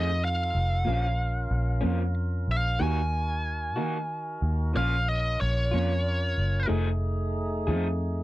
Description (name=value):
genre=blues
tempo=62 BPM (dotted quarters)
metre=12/8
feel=straight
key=Bb minor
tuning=A4 = 443 Hz
part: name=biting lead guitar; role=melody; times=0.0-6.7 s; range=Db5 to Ab5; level=-30 LUFS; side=right 1 dB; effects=overdrive
part: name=electric guitar through a small old amp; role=accompaniment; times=0.0-7.9 s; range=Bb2 to G#4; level=-31 LUFS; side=equal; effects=harmonic tremolo
part: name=tonewheel organ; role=sustained chords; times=0.0-8.2 s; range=A3 to Bb4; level=-36 LUFS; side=equal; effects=slow rotary speaker
part: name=vintage muted fingered electric bass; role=bass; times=0.0-8.2 s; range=F1 to Eb3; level=-27 LUFS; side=equal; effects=none
room=little or no reverb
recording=dry, close 1970s-style studio recording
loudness=-25 LUFS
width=side -16 dB against mid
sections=0.0-8.2 A section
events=lead electric guitar solo 0.0-8.2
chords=0.0 F7; 0.9 Bbm; 2.8 Ebm; 4.8 Bbm; 6.7 F7#9